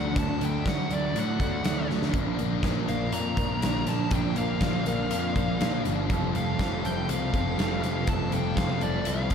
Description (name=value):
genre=rock, shoegaze and dream pop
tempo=121 BPM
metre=4/4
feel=straight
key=unclear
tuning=A4 = 440 Hz
part: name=fuzz lead guitar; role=melody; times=0.0-9.3 s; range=D5 to Bb5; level=-34 LUFS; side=equal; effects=distortion, analog delay
part: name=picked twelve-string acoustic guitar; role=arpeggios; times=0.0-9.3 s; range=F3 to G4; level=-37 LUFS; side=left 4 dB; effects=wide subtle chorus, analog delay
part: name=biting overdriven guitar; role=riff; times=0.0-9.3 s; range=F2 to D4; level=-32 LUFS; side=left 8 dB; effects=analog chorus
part: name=mellow electric guitar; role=riff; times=0.0-9.3 s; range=Bb2 to A4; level=-32 LUFS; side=right 9 dB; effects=reverse reverb
part: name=fuzz picked electric bass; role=bass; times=0.0-9.3 s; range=F1 to A2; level=-31 LUFS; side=equal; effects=overdrive
part: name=big rock drum kit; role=drums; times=0.2-9.3 s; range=hi-hat, kick drum, snare drum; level=-30 LUFS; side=equal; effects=none
room=moderate lush hall reverb, RT60 1.9 s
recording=dreamy mix soaked in reverb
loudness=-24 LUFS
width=side -7 dB against mid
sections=0.0-9.3 A section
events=drum fill 1.9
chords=0.0 D; 2.1 Bb; 6.1 Fadd9